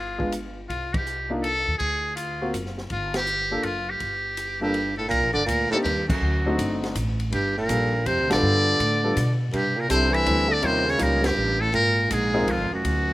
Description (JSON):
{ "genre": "jazz, small-group swing and bop", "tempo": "163 BPM", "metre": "3/4", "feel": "swing 66% on 8ths", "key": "G minor", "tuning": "A4 = 440 Hz", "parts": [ { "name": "trumpet with metal mute", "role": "melody", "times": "0.0-13.1 s", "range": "E#4 to E5", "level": "-25 LUFS", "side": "equal", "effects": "slapback echo" }, { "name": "upright bass", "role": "bass", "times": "0.0-13.1 s", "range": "F1 to C3", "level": "-28 LUFS", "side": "equal", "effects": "none" }, { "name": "warm concert grand piano", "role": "accompaniment", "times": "0.2-12.5 s", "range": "G3 to Bb4", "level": "-27 LUFS", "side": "left 1 dB", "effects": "slapback echo" }, { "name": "open jazz drum kit", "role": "drums", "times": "0.2-13.0 s", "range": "crash cymbal, hi-hat, kick drum, ride cymbal, snare drum", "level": "-33 LUFS", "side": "left 1 dB", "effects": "none" }, { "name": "clear baritone saxophone", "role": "second line", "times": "4.6-13.1 s", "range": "F2 to E3", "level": "-26 LUFS", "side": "right 2 dB", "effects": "slapback echo" } ], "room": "little or no reverb", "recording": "recorded outdoors, with no room sound", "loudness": "-21 LUFS", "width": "side -17 dB against mid", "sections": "0.0-5.1 A section; 5.1-13.1 B section", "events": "band accent 0.9, 3.1, 6.0, 8.2, 11.2", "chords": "0.0 G7b9; 0.7 Cmadd11; 1.8 D(#9); 2.9 G7(no3); 5.1 Cm9; 6.2 D7b9; 7.3 Gm9; 8.4 G7; 9.5 C6; 10.6 Eb9; 11.7 Ab6", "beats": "0.32 | 0.69 1.06 1.43 | 1.79 2.16 2.53 | 2.90 3.27 3.64 | 4.01 4.38 4.75 | 5.12 5.48 5.85 | 6.22 6.59 6.96 | 7.32 7.69 8.06 | 8.43 8.79 9.16 | 9.53 9.90 10.27 | 10.63 11.00 11.37 | 11.74 12.10 12.47 | 12.84" }